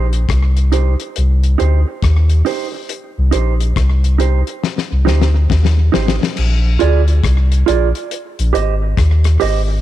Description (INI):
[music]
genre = roots reggae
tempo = 69 BPM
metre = 4/4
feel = swing 63% on 16ths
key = C minor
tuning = A4 = 441 Hz
[part]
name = mellow electric guitar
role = accompaniment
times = 0.0-9.7 s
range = Eb4 to Eb5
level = -20 LUFS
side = right 12 dB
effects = tape echo
[part]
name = soft dub sub bass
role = bass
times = 0.0-9.8 s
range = Ab1 to Eb2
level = -12 LUFS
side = equal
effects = none
[part]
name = damped 70s drum kit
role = drums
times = 0.1-9.7 s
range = crash cymbal, hi-hat, kick drum, rim click, snare drum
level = -20 LUFS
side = left 5 dB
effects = slapback echo
[sound]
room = little or no reverb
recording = 1960s-style stereo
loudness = -12 LUFS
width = side -13 dB against mid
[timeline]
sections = 0.0-6.4 A section; 6.4-9.8 B section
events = drum fill 4.6-6.4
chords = 0.0 Cm; 6.4 Bb7; 8.1 Abmaj7